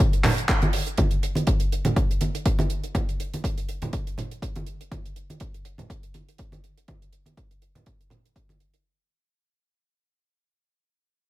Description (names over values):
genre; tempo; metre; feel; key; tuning
nu-disco; 122 BPM; 4/4; swing 56% on 16ths; none; none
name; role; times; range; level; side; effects
electronic kick drum; drums; 0.0-8.5 s; none; -25 LUFS; equal; small room ambience
maracas and congas; percussion; 0.0-8.6 s; none; -28 LUFS; right 1 dB; none
tight funk drum kit; drums; 0.1-8.8 s; handclaps, hi-hat; -30 LUFS; right 2 dB; small room ambience
room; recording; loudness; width
studio ambience; none; -23 LUFS; side -17 dB against mid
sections
0.0-8.8 A section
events
fade-out 0.0-8.8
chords
none